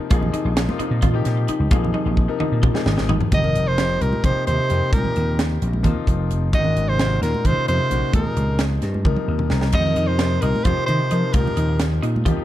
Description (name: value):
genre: electric jazz fusion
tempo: 262 BPM (eighths)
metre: 7/8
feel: straight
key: F minor from 3.3 s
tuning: A4 = 441 Hz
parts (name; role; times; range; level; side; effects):
- bright concert grand piano; accompaniment; 0.0-12.4 s; Bb2 to Bb5; -27 LUFS; left 7 dB; none
- clean electric guitar; stabs; 0.0-3.3, 9.7-12.4 s; Eb4 to F4; -29 LUFS; equal; analog chorus, tape echo
- vintage slap bass; bass; 0.1-12.4 s; F1 to F3; -21 LUFS; equal; none
- crisp fusion drum kit; drums; 0.1-12.4 s; crash cymbal, hi-hat, kick drum, snare drum, toms; -22 LUFS; equal; none
- congas; percussion; 0.1-12.4 s; none; -28 LUFS; right 3 dB; none
- breathy soprano saxophone; melody; 3.3-11.9 s; Bb4 to Eb5; -24 LUFS; right 1 dB; none
- dark bass clarinet; second line; 3.3-11.9 s; Bb2 to Eb3; -26 LUFS; right 2 dB; none
room: little or no reverb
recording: dark, warm production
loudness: -17 LUFS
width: side -13 dB against mid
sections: 0.0-3.3 A section; 3.3-12.4 B section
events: drum fill 1.9-3.3, 9.1-9.7; grand piano fill 2.6-3.3, 9.1-9.7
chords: 0.1 Bb7sus2; 3.3 F9sus4; 6.5 Ab9sus4; 8.1 Eb9sus4; 9.7 F9sus4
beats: | 0.11 0.34 0.57 0.80 1.03 1.26 1.49 | 1.71 1.94 2.17 2.40 2.63 2.86 3.09 | 3.32 3.55 3.78 4.00 4.24 4.46 4.69 | 4.92 5.15 5.38 5.61 5.84 6.07 6.30 | 6.53 6.76 6.99 7.22 7.45 7.67 7.90 | 8.13 8.36 8.59 8.82 9.05 9.28 9.51 | 9.74 9.97 10.20 10.43 10.65 10.88 11.11 | 11.34 11.57 11.80 12.03 12.26